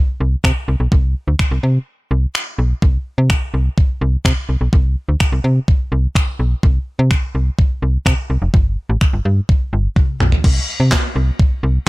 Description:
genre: dance-pop.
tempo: 126 BPM.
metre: 4/4.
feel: straight.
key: unclear.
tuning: A4 = 439 Hz.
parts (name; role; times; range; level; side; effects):
slap-like FM bass; bass; 0.2-11.8 s; F1 to C3; -15 LUFS; equal; sidechain pumping.
crisp 8-bit digital drum machine; drums; 0.4-11.5 s; crash cymbal, finger snaps, handclaps, kick drum, snare drum, toms; -14 LUFS; equal; none.
room: little or no reverb.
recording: none.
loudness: -14 LUFS.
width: side -21 dB against mid.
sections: 0.0-10.4 A section; 10.4-11.9 B section.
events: break 1.9-2.8; drum fill 10.0-10.4.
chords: none.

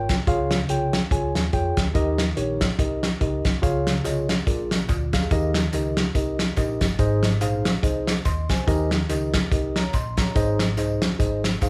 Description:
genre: uptempo gospel.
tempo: 143 BPM.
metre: 4/4.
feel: swing 57% on 8ths.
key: unclear.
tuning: A4 = 440 Hz.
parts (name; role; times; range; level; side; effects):
mellow tine electric piano; accompaniment; 0.0-11.7 s; Ab2 to C6; -27 LUFS; equal; none.
hollow-body short-scale fingered electric bass; bass; 0.0-11.7 s; F1 to F2; -31 LUFS; equal; none.
warm soul drum kit; drums; 0.1-11.7 s; hi-hat, kick drum, snare drum; -26 LUFS; equal; none.
tambourine and handclaps; percussion; 3.6-11.7 s; none; -44 LUFS; equal; none.
room: light reverb.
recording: band playing live in one room.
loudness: -23 LUFS.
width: mono.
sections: 0.0-11.7 A section.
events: none.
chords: 0.3 Db; 1.9 Eb; 3.6 Db; 4.5 Bb7; 5.3 Eb; 7.0 Ab; 8.7 Eb; 10.4 Ab.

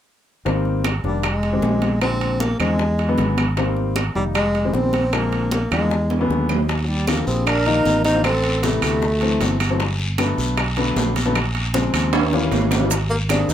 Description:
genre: Afro-Cuban jazz.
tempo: 154 BPM.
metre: 4/4.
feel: straight.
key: Eb major.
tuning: A4 = 438 Hz.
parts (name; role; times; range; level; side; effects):
dark concert grand piano; accompaniment; 0.5-13.5 s; C3 to G4; -24 LUFS; left 3 dB; none.
fingered electric bass; bass; 0.5-13.5 s; F1 to Fb2; -22 LUFS; equal; none.
bongos; percussion; 0.5-13.5 s; none; -30 LUFS; left 5 dB; none.
congas; percussion; 0.5-13.5 s; none; -28 LUFS; equal; none.
timbales; percussion; 0.5-13.5 s; none; -26 LUFS; right 5 dB; none.
claves; percussion; 0.8-13.5 s; none; -29 LUFS; right 5 dB; none.
breathy tenor saxophone; melody; 1.1-9.6, 13.1-13.5 s; Gb3 to Eb4; -21 LUFS; equal; none.
guiro; percussion; 6.7-13.5 s; none; -30 LUFS; left 3 dB; none.
breathy mellow jazz flute; second line; 6.8-9.6, 13.1-13.5 s; D4 to C5; -28 LUFS; right 3 dB; none.
maracas; percussion; 12.9-13.5 s; none; -29 LUFS; right 8 dB; none.
room: moderate small room reverb, RT60 0.6 s.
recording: none.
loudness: -17 LUFS.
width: side -10 dB against mid.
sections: 0.5-6.7 A section; 6.7-13.5 B section.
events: drum fill 6.1-6.7, 12.1-12.9.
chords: 0.5 Abmaj9; 1.2 Fm7; 2.0 Bb7; 2.8 E7; 3.6 Fm7; 5.1 Bb7; 5.9 E7; 6.7 Ebmaj7; 8.2 Am7; 9.0 D9; 9.8 Gmaj9; 11.4 Bbm9; 12.1 Eb7b9; 12.9 Abmaj7.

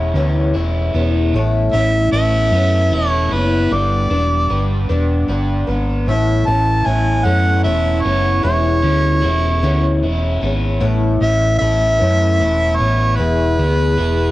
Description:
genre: rock.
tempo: 51 BPM (dotted quarters).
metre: 6/8.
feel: straight.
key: A major.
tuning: A4 = 435 Hz.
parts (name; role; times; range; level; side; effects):
picked twelve-string acoustic guitar; accompaniment; 0.0-14.3 s; E2 to B4; -21 LUFS; left 3 dB; none.
crunchy overdriven guitar; riff; 0.0-14.3 s; E2 to B4; -23 LUFS; right 2 dB; phaser.
hollow-body short-scale fingered electric bass; bass; 0.0-14.3 s; E1 to F#2; -17 LUFS; equal; none.
warm harmonica; melody; 1.7-14.3 s; B4 to A5; -19 LUFS; equal; digital delay.
room: light reverb.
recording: worn, warbling old tape, cassette tape, warbly pitch drift, nothing above 10.5 kHz.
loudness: -14 LUFS.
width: side -16 dB against mid.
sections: 0.0-14.3 A section.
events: none.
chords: 0.0 E6; 1.3 Aadd9; 3.7 G; 6.1 Aadd9; 8.5 E6; 10.8 Aadd9; 13.2 E.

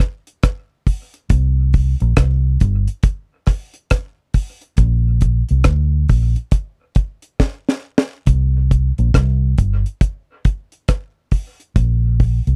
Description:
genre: dub reggae.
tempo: 69 BPM.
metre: 4/4.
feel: swing 62% on 16ths.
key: unclear.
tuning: A4 = 440 Hz.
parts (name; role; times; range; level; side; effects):
deep reggae drum kit; drums; 0.0-12.6 s; hi-hat, kick drum, rim click, snare drum; -17 LUFS; equal; none.
vintage muted fingered electric bass; bass; 1.3-12.6 s; G1 to D2; -17 LUFS; equal; none.
room: little or no reverb.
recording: dry, close 1970s-style studio recording.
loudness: -18 LUFS.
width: mono.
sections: 0.0-8.3 A section; 8.3-12.6 B section.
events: drum fill 7.4-8.3.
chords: none.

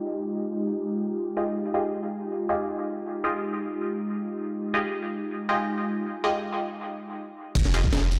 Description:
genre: drum and bass, jungle.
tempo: 160 BPM.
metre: 4/4.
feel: swing 54% on 16ths.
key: F minor.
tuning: A4 = 439 Hz.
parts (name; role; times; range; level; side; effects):
ethereal airy pad; sustained chords; 0.0-8.2 s; Ab3 to G5; -32 LUFS; equal; ensemble chorus, built-in reverb.
band-passed chord stab; stabs; 1.4-7.8 s; F4 to Eb5; -32 LUFS; equal; phaser, subtle chorus, cassette tape, dub echo.
soft dub sub bass; bass; 7.6-8.2 s; F1; -26 LUFS; equal; none.
breakbeat sampler-style drum kit; drums; 7.6-8.2 s; crash cymbal, hi-hat, kick drum, snare drum; -27 LUFS; equal; studio reverb.
crunchy breakbeat drum kit; drums; 7.6-8.2 s; hi-hat, snare drum, tambourine; -41 LUFS; equal; none.
downlifter; sound effects; 7.6-8.2 s; none; -40 LUFS; equal; none.
room: moderate lush hall reverb, RT60 2.0 s.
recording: played on a big sound system in a bare room, stone room reverb, low-pass filter.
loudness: -28 LUFS.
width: mono.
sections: 0.0-7.6 A section.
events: filter sweep on ambient pad 0.0-7.6; filter sweep 0.0-7.6; break 6.1-7.6.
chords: 0.0 Fm9.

